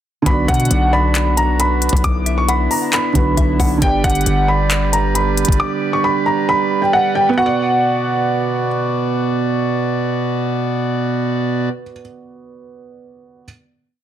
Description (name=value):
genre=hip hop, trap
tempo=135 BPM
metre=4/4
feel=half-time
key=B minor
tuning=A4 = 441 Hz
part: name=felt-muted upright piano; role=accompaniment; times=0.2-13.4 s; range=D3 to D5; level=-22 LUFS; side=right 4 dB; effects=none
part: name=dark grand piano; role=melody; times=0.3-8.7 s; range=F#5 to D6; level=-18 LUFS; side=equal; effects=tape echo
part: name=pipe organ, foundations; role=sustained chords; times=0.3-11.7 s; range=B2 to D5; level=-20 LUFS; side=right 2 dB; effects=none
part: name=hard-hitting 808-style bass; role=bass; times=0.3-5.6 s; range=G1 to B2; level=-18 LUFS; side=left 1 dB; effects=none
part: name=trap drum kit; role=drums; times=0.3-5.6 s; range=handclaps, hi-hat, kick drum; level=-18 LUFS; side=left 1 dB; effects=none
part: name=hollow square pluck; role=second line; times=0.9-3.8 s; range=D5 to F#5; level=-28 LUFS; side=left 4 dB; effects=chorus, phaser, tape echo
room=studio reverb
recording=dense, heavily limited modern master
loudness=-14 LUFS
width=side -10 dB against mid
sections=0.3-7.4 hook; 7.4-10.9 final chord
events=none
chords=0.3 Bm; 3.8 G; 7.4 Bm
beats=| 0.26 0.71 1.15 1.60 | 2.04 2.48 2.93 3.37 | 3.82 4.26 4.71 5.15 | 5.60 6.04 6.49 6.93 | 7.37 7.82 8.26 8.71 | 9.15 9.60 10.04 10.48